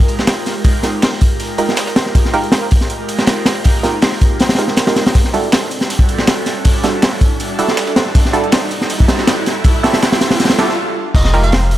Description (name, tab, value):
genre	drum and bass, jungle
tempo	160 BPM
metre	4/4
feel	straight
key	unclear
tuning	A4 = 439 Hz
part	airy breathy pad	sustained chords	0.0-11.8 s	G3 to Bb4	-22 LUFS	right 2 dB	chorus, phaser
part	filtered dub chord stab	stabs	0.0-11.8 s	G3 to Bb4	-20 LUFS	right 3 dB	chorus, dub echo
part	crunchy breakbeat drum kit	drums	0.0-11.8 s	crash cymbal, hi-hat, kick drum, snare drum	-13 LUFS	equal	none
part	riser	sound effects	2.9-10.8 s	none	-26 LUFS	equal	none
part	breakbeat sampler-style drum kit	drums	0.1-10.7 s	hi-hat, snare drum	-23 LUFS	right 2 dB	high-pass filter on hats, high-pass filter on snare
part	long sustained 808-style bass	bass	11.1-11.8 s	F1	-14 LUFS	equal	tube saturation
part	hollow square pluck	melody	11.2-11.7 s	Eb5 to F5	-22 LUFS	right 3 dB	chorus, dub echo
room	light reverb, studio ambience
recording	none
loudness	-12 LUFS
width	side -14 dB against mid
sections	0.0-11.2 A section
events	build-up 0.0-11.2; riser 2.9-10.8; stop 10.8-11.2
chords	0.0 Fm11; 5.2 Em11; 11.2 Fm11